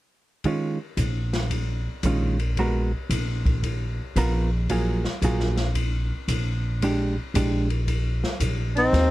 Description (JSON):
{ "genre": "jazz, small-group swing and bop", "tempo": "113 BPM", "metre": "4/4", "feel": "swing 67% on 8ths", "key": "unclear", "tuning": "A4 = 440 Hz", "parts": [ { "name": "open jazz drum kit", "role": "drums", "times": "0.4-9.1 s", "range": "hi-hat, kick drum, ride cymbal, snare drum", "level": "-30 LUFS", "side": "left 1 dB", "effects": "none" }, { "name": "hollow-body jazz guitar", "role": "accompaniment", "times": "0.5-7.7 s", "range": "Eb3 to Bb4", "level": "-25 LUFS", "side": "right 2 dB", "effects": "none" }, { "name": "upright bass", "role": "bass", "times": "1.0-9.1 s", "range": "Bb1 to Eb2", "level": "-24 LUFS", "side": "equal", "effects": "none" }, { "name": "breathy tenor saxophone", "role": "melody", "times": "8.8-9.1 s", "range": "C4", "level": "-19 LUFS", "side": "left 1 dB", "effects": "none" }, { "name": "breathy alto saxophone", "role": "second line", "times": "8.8-9.1 s", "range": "Eb4", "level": "-26 LUFS", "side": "right 2 dB", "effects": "none" } ], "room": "little or no reverb", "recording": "close, detailed microphones", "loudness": "-22 LUFS", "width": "side -16 dB against mid", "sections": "0.5-8.9 A section", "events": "none", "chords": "0.5 Eb9sus4; 2.6 Abm9; 3.6 Bb5; 4.7 Gbmaj9; 6.8 Bb6", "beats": "| 0.45 0.98 1.52 2.05 | 2.58 3.11 3.64 4.17 | 4.70 5.23 5.76 6.29 | 6.82 7.35 7.88 8.41 | 8.94" }